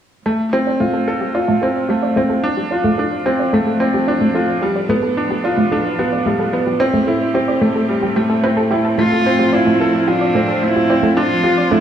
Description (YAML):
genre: electronica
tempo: 110 BPM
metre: 4/4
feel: straight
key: unclear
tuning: A4 = 443 Hz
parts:
  - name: bright studio string section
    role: sustained chords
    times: 0.3-11.8 s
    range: A2 to G4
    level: -25 LUFS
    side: right 2 dB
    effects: none
  - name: analog pluck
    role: arpeggios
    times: 0.3-11.8 s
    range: A3 to A5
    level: -21 LUFS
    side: right 1 dB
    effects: chorus, tape echo
  - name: bright upright piano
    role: riff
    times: 0.3-11.8 s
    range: G3 to A4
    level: -16 LUFS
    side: equal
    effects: tape echo
  - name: dark cello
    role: melody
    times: 9.0-11.8 s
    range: D4 to F4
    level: -16 LUFS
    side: right 1 dB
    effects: none
room: wet recital hall reverb, RT60 1.3 s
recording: small room ambience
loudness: -14 LUFS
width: side -9 dB against mid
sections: 0.3-11.8 A section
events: fade-in on string section 0.3-11.8; filter sweep on synth arpeggio sound 0.3-11.8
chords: 0.3 Dm7/A; 4.6 G7/A; 6.8 Am7; 9.0 Dm7/A